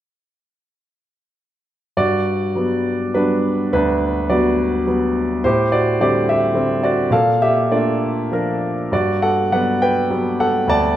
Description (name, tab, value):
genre	classical, lyrical solo piano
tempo	98-109 BPM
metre	3/4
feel	rubato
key	G major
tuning	A4 = 441 Hz
part	clear concert grand piano	solo	2.0-11.0 s	D2 to A5	-15 LUFS	equal	none
room	moderate recital hall reverb, RT60 1.6 s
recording	minimal, uncompressed stereo recording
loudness	-16 LUFS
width	side -12 dB against mid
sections	2.0-11.0 A section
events	none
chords	2.0 Gmaj7; 5.4 D7sus4/A; 7.1 Bbmaj7; 8.9 Gmaj7